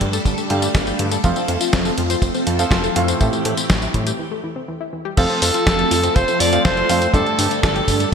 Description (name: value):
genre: italo disco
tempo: 122 BPM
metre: 4/4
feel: straight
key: F major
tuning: A4 = 440 Hz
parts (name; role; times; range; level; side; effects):
- phased string machine; sustained chords; 0.0-8.1 s; E3 to A4; -23 LUFS; equal; ensemble chorus, phaser
- analog pluck; arpeggios; 0.0-8.1 s; D3 to C5; -27 LUFS; left 3 dB; chorus, ping-pong delay
- bright grand piano; stabs; 0.0-8.1 s; G2 to G5; -24 LUFS; right 2 dB; ping-pong delay
- fat analog bass; bass; 0.0-8.1 s; F1 to A2; -23 LUFS; equal; tube saturation
- detuned 8-bit digital drum machine; drums; 0.0-8.1 s; crash cymbal, hi-hat, snare drum, tambourine; -23 LUFS; left 1 dB; gated reverb
- kick drum; drums; 0.0-8.0 s; none; -18 LUFS; equal; none
- breathy alto saxophone; melody; 5.2-8.1 s; A4 to D5; -19 LUFS; equal; ping-pong delay
room: moderate lush hall reverb, RT60 2.4 s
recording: bright 1980s-style digital production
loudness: -15 LUFS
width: side -6 dB against mid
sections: 0.0-5.2 A section; 5.2-8.1 B section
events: break 4.2-5.2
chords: 0.0 Gsus2; 1.2 F; 3.2 Am7; 5.2 F; 7.1 Gsus2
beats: 0.26 0.75 | 1.24 1.73 2.22 2.71 | 3.21 3.70 4.19 4.68 | 5.17 5.67 6.16 6.65 | 7.14 7.63 8.12